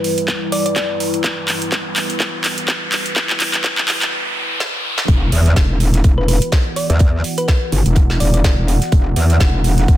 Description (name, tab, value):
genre	bass house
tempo	125 BPM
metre	4/4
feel	swing 56% on 16ths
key	E minor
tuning	A4 = 440 Hz
part	dark analog pad	sustained chords	0.0-5.0 s	G3 to B4	-25 LUFS	equal	chorus, phaser, sidechain pumping
part	garage drum kit	drums	0.0-10.0 s	handclaps, hi-hat, snare drum	-20 LUFS	equal	overdrive
part	riser and impact	sound effects	0.0-7.0 s	none	-26 LUFS	equal	none
part	deep dark ambient pad	texture	0.0-10.0 s	E4 to F#5	-28 LUFS	right 3 dB	chorus, built-in reverb, sidechain pumping
part	electronic kick drum	drums	0.3-10.0 s	none	-14 LUFS	equal	high-pass filter on kick
part	thumb-piano-like synth pluck	melody	0.5-0.7, 6.2-8.4 s	B4 to D5	-24 LUFS	left 2 dB	chorus, dub echo
part	metallic wobble bass	bass	5.1-10.0 s	E1 to E2	-14 LUFS	equal	chorus, tube saturation, sidechain pumping
part	damped 70s drum kit	drums	5.1-10.0 s	hi-hat, snare drum	-35 LUFS	right 5 dB	none
room	light reverb, digital ambience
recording	dense, heavily limited modern master, high-pass filter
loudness	-14 LUFS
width	side -13 dB against mid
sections	0.0-5.1 A section; 5.1-10.0 B section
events	build-up 0.0-5.1; drum fill 0.0-4.1, 4.6-5.1; riser 0.0-5.1; filter sweep on analog synth pad 0.0-5.1; filter sweep 0.0-5.1; break 4.1-5.1; drop 5.1-10.0; impact 5.1-7.0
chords	0.0 Em; 5.1 E5